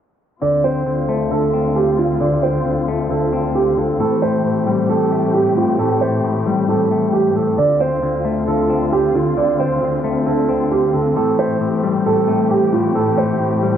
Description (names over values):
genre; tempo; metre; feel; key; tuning
hip hop; 134 BPM; 4/4; half-time; D minor; A4 = 438 Hz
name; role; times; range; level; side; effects
dark baby grand piano; melody; 0.4-13.8 s; F4 to D5; -18 LUFS; right 7 dB; low-pass filter, cassette tape
semi-hollow electric guitar; accompaniment; 0.4-13.8 s; A2 to C4; -20 LUFS; left 7 dB; low-pass filter, cassette tape
dark symphonic string section; sustained chords; 0.4-13.8 s; D2 to G4; -21 LUFS; left 1 dB; cassette tape
room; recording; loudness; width
wet studio ambience, RT60 0.5 s; home recording on cassette, low-pass filter; -15 LUFS; side -9 dB against mid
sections
0.4-13.8 A section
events
none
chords
0.4 Dm7; 4.0 Am7; 7.6 Dm7; 11.2 Am7